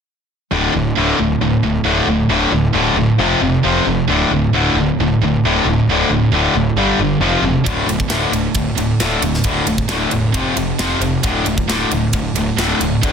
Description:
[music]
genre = heavy metal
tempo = 134 BPM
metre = 4/4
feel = straight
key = D minor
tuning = A4 = 439 Hz
[part]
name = distorted electric guitar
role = riff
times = 0.5-13.1 s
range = D2 to G3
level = -18 LUFS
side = left 10 dB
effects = overdrive
[part]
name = high-gain distorted guitar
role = riff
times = 0.5-13.1 s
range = D2 to G3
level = -18 LUFS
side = right 8 dB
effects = distortion
[part]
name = fuzz picked electric bass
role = bass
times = 0.5-13.1 s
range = D1 to G1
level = -21 LUFS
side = equal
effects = overdrive
[part]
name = tight metal drum kit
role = drums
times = 7.7-13.1 s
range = kick drum, ride cymbal, snare drum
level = -21 LUFS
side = equal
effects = soft clipping on kick
[sound]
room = light reverb, small room ambience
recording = dense, heavily limited modern master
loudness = -14 LUFS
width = side -7 dB against mid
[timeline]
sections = 0.5-13.1 A section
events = none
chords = 0.5 D5; 3.2 F5; 4.1 D5; 6.8 G5; 7.2 F5; 7.7 D5; 10.4 F5; 11.2 D5

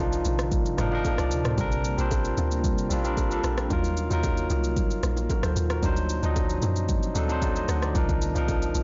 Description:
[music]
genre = amapiano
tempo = 113 BPM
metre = 4/4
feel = straight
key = Bb major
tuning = A4 = 440 Hz
[part]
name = barky tine electric piano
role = accompaniment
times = 0.0-8.8 s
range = F3 to F#5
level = -31 LUFS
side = equal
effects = none
[part]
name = ethereal airy pad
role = sustained chords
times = 0.0-8.8 s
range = Bb2 to F4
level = -37 LUFS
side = equal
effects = ensemble chorus, built-in reverb
[part]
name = deep log drum bass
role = bass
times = 0.0-8.8 s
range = G1 to F#2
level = -30 LUFS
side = equal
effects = none
[part]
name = afro-pop drum kit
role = drums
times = 0.1-8.8 s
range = kick drum, rim click, shaker, toms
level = -31 LUFS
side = equal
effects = none
[part]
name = bongos and congas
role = percussion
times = 0.3-8.8 s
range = none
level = -41 LUFS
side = equal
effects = none
[sound]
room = light reverb, digital ambience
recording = blown-out, overdriven recording, overdrive, nothing above 7.5 kHz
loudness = -26 LUFS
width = mono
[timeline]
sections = 0.0-8.8 A section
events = none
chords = 0.0 Cm11; 1.6 Bb69; 3.7 Ebmadd9; 5.8 D7b9; 8.0 Cm11

